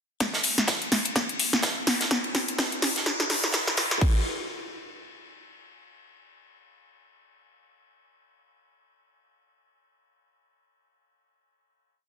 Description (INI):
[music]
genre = house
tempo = 126 BPM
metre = 4/4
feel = swing 58% on 16ths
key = none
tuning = none
[part]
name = big-room dance drum kit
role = drums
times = 0.2-4.1 s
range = crash cymbal, hi-hat, snare drum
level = -25 LUFS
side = equal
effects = studio ambience
[part]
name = electronic kick drum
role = drums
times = 0.2-4.1 s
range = none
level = -26 LUFS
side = equal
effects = high-pass filter on kick, studio ambience
[part]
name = tight metal drum kit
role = drums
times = 0.2-3.9 s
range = hi-hat, ride cymbal, snare drum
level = -31 LUFS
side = equal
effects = high-pass filter on cymbals, studio ambience, high-pass filter on hats, high-pass filter on snare, high-pass filter on room
[sound]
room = moderate plate reverb, RT60 2.1 s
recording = dense, heavily limited modern master, high-pass filter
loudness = -23 LUFS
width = side -6 dB against mid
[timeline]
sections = 0.2-4.0 build; 4.0-5.9 final hit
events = build-up 0.2-4.0; drum fill 0.2-4.0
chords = none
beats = | 0.20 0.68 1.16 1.63 | 2.11 2.58 3.06 3.54 | 4.01